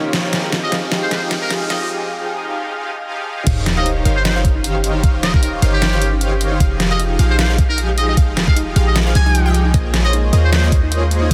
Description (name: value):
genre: future bass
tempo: 153 BPM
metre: 4/4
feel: swing 56% on 16ths, half-time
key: F minor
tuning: A4 = 440 Hz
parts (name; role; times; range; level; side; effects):
- felt-muted upright piano; accompaniment; 0.0-3.5 s; Eb3 to G5; -34 LUFS; equal; none
- ethereal airy pad; sustained chords; 0.7-11.3 s; Eb3 to G5; -37 LUFS; equal; none
- soft supersaw; riff; 0.0-11.3 s; Eb3 to Ab5; -24 LUFS; equal; sidechain pumping, low-pass filter
- riser and sub drop; sound effects; 0.1-5.0 s; none; -31 LUFS; equal; none
- dubstep drum kit; drums; 0.1-11.3 s; crash cymbal, hi-hat, snare drum; -24 LUFS; equal; overdrive
- trumpet with metal mute; melody; 0.6-10.6 s; G4 to Ab5; -27 LUFS; equal; sidechain pumping, dub echo
- thumb-piano-like synth pluck; arpeggios; 3.5-11.3 s; Eb4 to C5; -32 LUFS; equal; none
- unison pluck; arpeggios; 3.5-11.3 s; Eb5 to Ab5; -33 LUFS; equal; none
- warm 808-style bass; bass; 3.5-11.3 s; Eb1 to Eb2; -19 LUFS; equal; sidechain pumping
- electronic kick drum; drums; 3.5-11.3 s; none; -17 LUFS; equal; none
room: light reverb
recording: dense, heavily limited modern master, high-pass filter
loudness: -16 LUFS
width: mono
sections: 0.0-3.5 A section; 3.5-11.3 B section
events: build-up 0.0-3.5; drum fill 0.0-1.9; riser 0.1-1.9; filter sweep on supersaw synth 0.0-3.5; break 1.9-3.5; drop 3.5-11.3; impact 3.5-5.0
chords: 0.3 Fm9; 3.5 Eb13; 6.6 Fm9; 9.7 Bbm11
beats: | 0.33 0.72 1.11 1.51 | 1.90 2.29 2.68 3.08 | 3.47 3.86 4.25 4.64 | 5.04 5.43 5.82 6.21 | 6.60 7.00 7.39 7.78 | 8.17 8.56 8.96 9.35 | 9.74 10.13 10.53 10.92 | 11.31